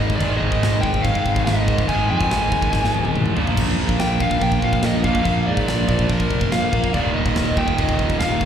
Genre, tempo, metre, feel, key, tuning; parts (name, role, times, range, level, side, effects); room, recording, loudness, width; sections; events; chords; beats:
heavy metal; 143 BPM; 4/4; straight; A4 = 440 Hz
smooth overdriven lead guitar; melody; 0.0-8.5 s; Bb4 to Ab5; -24 LUFS; equal; slapback echo, digital delay
high-gain distorted guitar; riff; 0.0-8.5 s; Eb2 to Bb3; -21 LUFS; right 1 dB; distortion
fuzz fingered electric bass; bass; 0.0-8.5 s; Eb1 to Ab2; -23 LUFS; equal; overdrive
tight metal drum kit; drums; 0.1-8.5 s; china cymbal, crash cymbal, kick drum, snare drum, splash cymbal, toms; -24 LUFS; equal
small room ambience; live gig heard through the venue's PA, recital hall reverb; -17 LUFS; side -8 dB against mid
0.0-8.5 A section
drum fill 2.7-3.6
0.0 Ab5; 3.4 Bb5; 6.9 Eb5
| 0.21 0.63 1.06 1.48 | 1.90 2.32 2.74 3.16 | 3.58 4.00 4.43 4.85 | 5.27 5.69 6.11 6.53 | 6.95 7.37 7.79 8.21